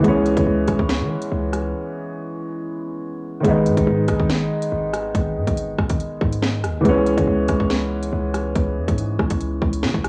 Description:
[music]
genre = hip hop, drill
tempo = 141 BPM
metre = 4/4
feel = half-time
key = unclear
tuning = A4 = 440 Hz
[part]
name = dark grand piano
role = accompaniment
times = 0.0-10.1 s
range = D#3 to D#4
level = -23 LUFS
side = equal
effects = low-pass filter, cassette tape
[part]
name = hard-hitting 808-style bass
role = bass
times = 0.0-10.1 s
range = G1 to E3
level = -27 LUFS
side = equal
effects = none
[part]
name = drill drum kit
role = drums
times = 0.0-10.1 s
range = hi-hat, kick drum, rim click, snare drum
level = -26 LUFS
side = equal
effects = cassette tape
[sound]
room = digital ambience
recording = home recording on cassette, small room ambience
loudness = -21 LUFS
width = mono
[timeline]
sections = 0.0-10.1 A section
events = break 1.7-3.4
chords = 0.0 C#m7; 3.4 G#m; 6.8 C#m7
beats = | 0.04 0.47 0.89 1.32 | 1.74 2.17 2.60 3.02 | 3.45 3.87 4.30 4.72 | 5.15 5.57 6.00 6.42 | 6.85 7.28 7.70 8.13 | 8.55 8.98 9.40 9.83

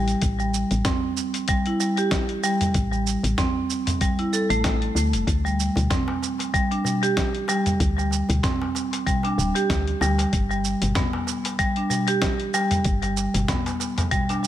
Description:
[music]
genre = organic downtempo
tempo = 95 BPM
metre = 4/4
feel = swing 56% on 16ths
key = A minor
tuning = A4 = 440 Hz
[part]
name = marimba with medium hard mallets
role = arpeggios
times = 0.0-14.5 s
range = G3 to A4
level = -24 LUFS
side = right 1 dB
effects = ping-pong delay
[part]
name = woody FM bass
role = bass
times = 0.0-13.4 s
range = D1 to D2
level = -24 LUFS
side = equal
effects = none
[part]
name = dusty soul sampler-style drum kit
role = drums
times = 0.1-14.5 s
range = cabasa, hi-hat, snare drum, toms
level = -28 LUFS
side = equal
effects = none
[part]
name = electronic kick drum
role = drums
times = 0.2-14.3 s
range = none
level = -26 LUFS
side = equal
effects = none
[part]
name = darbuka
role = percussion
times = 5.8-14.4 s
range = none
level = -34 LUFS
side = left 2 dB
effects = none
[sound]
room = light reverb, digital ambience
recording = none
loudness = -21 LUFS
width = side -12 dB against mid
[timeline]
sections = 0.0-14.5 A section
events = none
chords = 0.0 Am7; 5.3 D7sus4; 10.3 G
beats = | 0.22 0.85 1.49 2.12 | 2.75 3.38 4.01 4.64 | 5.28 5.91 6.54 7.17 | 7.80 8.43 9.06 9.70 | 10.33 10.96 11.59 12.22 | 12.85 13.48 14.12

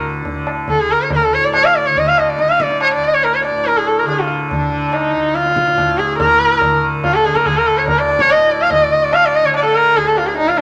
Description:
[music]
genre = indian classical, Hindustani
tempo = 142 BPM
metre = 4/4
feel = straight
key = D raga todi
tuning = A4 = 436 Hz
[part]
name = tanpura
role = drone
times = 0.0-10.6 s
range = D2 to D3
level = -26 LUFS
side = equal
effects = none
[part]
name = tabla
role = percussion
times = 0.3-10.6 s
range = none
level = -27 LUFS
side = equal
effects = none
[part]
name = warm sarangi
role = melody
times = 0.7-10.6 s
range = D4 to F5+22c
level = -15 LUFS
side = equal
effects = none
[sound]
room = moderate studio reverb, RT60 0.8 s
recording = none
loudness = -15 LUFS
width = mono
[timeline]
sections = 0.0-6.2 A section; 6.2-10.6 B section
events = speeding up 0.0-10.6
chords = none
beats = 0.25 0.68 | 1.11 1.54 1.96 2.39 | 2.81 3.24 3.66 4.09 | 4.51 4.93 5.35 5.78 | 6.20 6.62 7.04 7.46 | 7.88 8.29 8.71 9.13 | 9.55 9.96 10.38

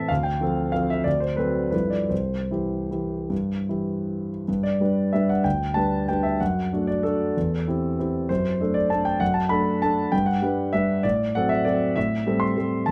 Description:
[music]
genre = classical, piano waltz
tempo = 144-213 BPM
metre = 3/4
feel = rubato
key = C major, G major from 4.5 s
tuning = A4 = 440 Hz
[part]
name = warm concert grand piano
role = solo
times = 0.0-12.9 s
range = C2 to C6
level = -24 LUFS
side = equal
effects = none
[sound]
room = little or no reverb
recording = close, detailed microphones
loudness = -24 LUFS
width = mono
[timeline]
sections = 0.0-4.5 A section; 4.5-12.9 B section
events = none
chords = 0.1 Dm7; 1.1 D7; 1.7 G13; 2.1 C; 4.5 G; 6.4 D/F#; 7.4 C/E; 8.3 D7/F#; 10.1 G; 11.0 D7/A; 12.0 Am7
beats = | 0.10 0.41 0.74 | 1.06 1.38 1.73 | 2.11 2.50 2.91 | 3.31 3.69 4.08 | 4.47 4.80 5.13 | 5.45 5.76 6.09 | 6.41 6.72 7.04 | 7.36 7.67 7.99 | 8.30 8.60 8.91 | 9.21 9.50 9.82 | 10.12 10.42 10.73 | 11.04 11.35 11.66 | 11.96 12.26 12.57 | 12.88

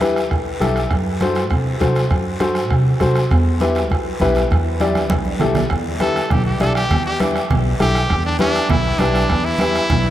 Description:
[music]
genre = latin, cumbia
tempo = 200 BPM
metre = 4/4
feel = straight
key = E minor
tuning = A4 = 440 Hz
[part]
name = warm upright piano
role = accompaniment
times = 0.0-9.8 s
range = E4 to D5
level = -21 LUFS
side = left 2 dB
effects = none
[part]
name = upright bass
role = bass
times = 0.0-10.1 s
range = B1 to C3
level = -20 LUFS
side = equal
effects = none
[part]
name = bombo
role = percussion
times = 0.0-10.0 s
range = none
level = -22 LUFS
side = right 2 dB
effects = none
[part]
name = congas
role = percussion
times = 0.0-10.0 s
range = none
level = -24 LUFS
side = right 1 dB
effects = none
[part]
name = guiro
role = percussion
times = 0.0-10.1 s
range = none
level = -32 LUFS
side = left 1 dB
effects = none
[part]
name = brilliant trumpet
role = melody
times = 6.0-10.1 s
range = D4 to A4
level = -20 LUFS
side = equal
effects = none
[sound]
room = wet cathedral reverb, RT60 7.5 s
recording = in a vast, echoing space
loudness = -15 LUFS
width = side -12 dB against mid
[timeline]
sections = 0.0-5.7 A section; 5.7-10.1 B section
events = drum fill 5.0-5.7; trumpet solo 5.7-10.1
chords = 0.0 Em; 0.9 F#dim; 3.3 Em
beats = 0.01 0.30 0.60 | 0.91 1.21 1.50 1.80 | 2.10 2.40 2.70 3.00 | 3.30 3.60 3.90 4.20 | 4.50 4.80 5.10 5.40 | 5.70 6.00 6.30 6.60 | 6.90 7.20 7.50 7.80 | 8.10 8.40 8.70 9.00 | 9.30 9.60 9.90

